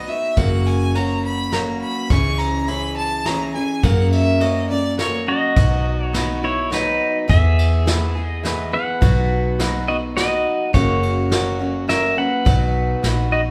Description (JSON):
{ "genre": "honky-tonk and classic country", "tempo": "104 BPM", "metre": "3/4", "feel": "straight", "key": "B major", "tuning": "A4 = 440 Hz", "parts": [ { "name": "clear fiddle", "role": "second line", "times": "0.0-5.2 s", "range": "C#5 to C#6", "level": "-26 LUFS", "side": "equal", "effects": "none" }, { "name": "bright grand piano", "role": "accompaniment", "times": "0.0-13.4 s", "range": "C#4 to D#5", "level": "-33 LUFS", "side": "equal", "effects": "none" }, { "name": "picked steel-string acoustic guitar", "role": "accompaniment", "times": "0.0-13.5 s", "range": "F#2 to A#4", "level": "-26 LUFS", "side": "equal", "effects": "none" }, { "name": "vintage muted fingered electric bass", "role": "bass", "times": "0.0-13.5 s", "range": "F#1 to F#2", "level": "-23 LUFS", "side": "equal", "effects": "none" }, { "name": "vintage brush drum kit", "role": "drums", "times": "0.4-13.2 s", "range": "kick drum, ride cymbal, snare drum", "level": "-24 LUFS", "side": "equal", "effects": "none" }, { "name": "pedal steel guitar", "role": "melody", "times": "5.3-13.4 s", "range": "D#4 to F#5", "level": "-24 LUFS", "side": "equal", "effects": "none" } ], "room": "moderate large studio reverb, RT60 1.0 s", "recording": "band playing live in one room", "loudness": "-19 LUFS", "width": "mono", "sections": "0.0-5.6 A section; 5.6-13.5 B section", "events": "fiddle solo 0.0-5.6", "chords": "0.4 F#; 2.1 C#m; 3.8 F#; 5.6 B; 7.3 E; 9.0 B; 10.7 F#; 12.5 B", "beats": "| 0.37 0.95 1.53 | 2.10 2.68 3.26 | 3.83 4.41 4.99 | 5.56 6.14 6.71 | 7.29 7.87 8.44 | 9.02 9.59 10.16 | 10.74 11.31 11.89 | 12.46 13.04" }